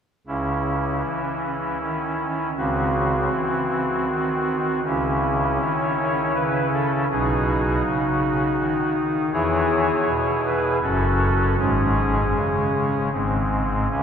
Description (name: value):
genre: classical, chorale-style piece for pipe organ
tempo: 80 BPM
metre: 3/4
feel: straight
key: C# minor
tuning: A4 = 440 Hz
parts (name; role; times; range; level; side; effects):
- pipe organ, soft reed; solo; 0.3-14.0 s; F#1 to C#5; -20 LUFS; equal; none
room: wet cathedral reverb, RT60 4.5 s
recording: heard from further back in the room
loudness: -20 LUFS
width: side -8 dB against mid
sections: 0.3-4.8 A section; 4.8-14.0 B section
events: none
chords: 0.3 C#m; 2.6 C#mmaj7; 4.8 C#m; 7.1 B; 9.3 E; 10.8 F#m; 11.6 G#sus4; 13.1 G#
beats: | 0.29 1.06 1.81 | 2.55 3.30 4.06 | 4.84 5.60 6.35 | 7.10 7.85 8.59 | 9.34 10.08 10.83 | 11.59 12.36 13.13 | 13.91